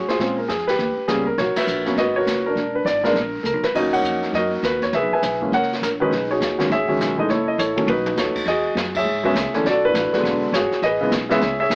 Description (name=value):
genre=jazz piano trio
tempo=203 BPM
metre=4/4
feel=swing 62% on 8ths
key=B major, E major from 8.5 s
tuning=A4 = 440 Hz
part: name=warm baby grand piano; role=melody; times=0.0-11.8 s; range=C#3 to G#5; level=-18 LUFS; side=equal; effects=none
part: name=upright bass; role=bass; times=0.0-11.8 s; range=E1 to A#2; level=-29 LUFS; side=equal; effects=none
part: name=jazz brush drum kit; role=drums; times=0.1-11.8 s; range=brushed snare drum, crash cymbal, hi-hat, kick drum, ride cymbal, snare drum, toms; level=-27 LUFS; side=equal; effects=none
room=light reverb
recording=AM radio sound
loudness=-18 LUFS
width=side -31 dB against mid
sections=0.0-8.5 A section; 8.5-11.8 B section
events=band accent 1.5, 3.9, 8.9; drum fill 3.4, 7.6-8.2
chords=0.2 A#m7; 0.8 D#7b13; 1.4 G#m11; 2.6 E7#11; 3.7 D#m7; 4.9 C#m7; 5.5 F#add9; 6.1 B69; 7.3 F#m7; 7.9 B7; 8.5 E69; 9.6 Bm7; 10.2 E9; 10.8 Amaj9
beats=| 0.20 0.49 0.79 1.09 | 1.38 1.68 1.97 2.27 | 2.56 2.86 3.15 3.45 | 3.74 4.04 4.33 4.63 | 4.93 5.22 5.52 5.81 | 6.11 6.40 6.70 6.99 | 7.29 7.58 7.88 8.18 | 8.47 8.77 9.06 9.35 | 9.65 9.94 10.24 10.53 | 10.83 11.12 11.41 11.71